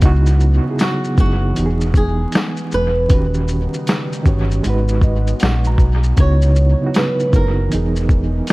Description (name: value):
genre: lo-fi hip hop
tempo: 78 BPM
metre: 4/4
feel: swing 65% on 16ths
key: C# dorian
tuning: A4 = 440 Hz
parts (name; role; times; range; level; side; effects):
- reed electric piano; accompaniment; 0.0-8.5 s; C#3 to A#5; -20 LUFS; right 1 dB; fast tremolo, dub echo
- warbly tape-like pad; sustained chords; 0.0-8.5 s; C#3 to F#4; -30 LUFS; left 1 dB; chorus, built-in reverb
- sub bass with octave; bass; 0.0-8.4 s; D#1 to C#2; -16 LUFS; equal; none
- lo-fi sampler-style drum kit; drums; 0.0-8.5 s; hi-hat, kick drum, shaker, snare drum; -16 LUFS; equal; none
- flamenco guitar; melody; 0.8-8.5 s; F#4 to C#5; -23 LUFS; right 1 dB; dub echo
- tambourine; percussion; 0.8-8.5 s; none; -42 LUFS; left 5 dB; none
room: little or no reverb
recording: echo-heavy mix, vinyl crackle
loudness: -14 LUFS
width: side -21 dB against mid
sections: 0.0-8.5 A section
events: reed electric piano fill 4.6-6.2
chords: 0.0 C#m11; 1.6 Emaj7; 3.1 D#7alt; 4.6 G#m7; 6.2 C#m11; 7.7 Emaj7